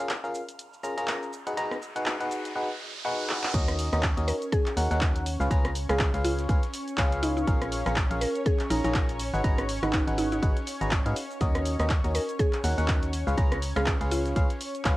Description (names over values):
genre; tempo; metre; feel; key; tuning
piano house; 122 BPM; 4/4; swing 57% on 16ths; Eb minor; A4 = 440 Hz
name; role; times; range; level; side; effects
analog string pad; sustained chords; 0.0-15.0 s; Db4 to F6; -37 LUFS; right 1 dB; ensemble chorus, sidechain pumping, cassette tape
barking FM electric piano; riff; 0.0-15.0 s; Db4 to Bb5; -31 LUFS; left 1 dB; chorus, sidechain pumping, cassette tape
punchy analog drum machine; drums; 0.0-15.0 s; crash cymbal, handclaps, hi-hat, rim click, shaker; -33 LUFS; equal; cassette tape
riser; sound effects; 1.3-3.5 s; none; -38 LUFS; right 2 dB; none
organ-like FM bass; bass; 3.5-15.0 s; Ab1 to Ab2; -29 LUFS; equal; sidechain pumping
dusty soul sampler-style drum kit; drums; 3.5-15.0 s; hi-hat, snare drum; -48 LUFS; right 1 dB; none
electronic kick drum; drums; 3.5-15.0 s; none; -26 LUFS; equal; overdrive, cassette tape
mallet-like synth pluck; melody; 4.3-14.3 s; Eb4 to Bb4; -30 LUFS; equal; chorus, cassette tape
room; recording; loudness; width
light reverb; home recording on cassette; -24 LUFS; side -17 dB against mid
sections
0.0-3.5 A section; 3.5-15.0 B section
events
riser 1.3-3.5; drum fill 3.3; drop 3.5-15.0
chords
0.0 Bbm7; 1.3 Abm7; 3.5 Ebm7; 5.3 Db7; 7.5 Bbm7; 9.2 Abm7; 11.4 Ebm7; 13.1 Db7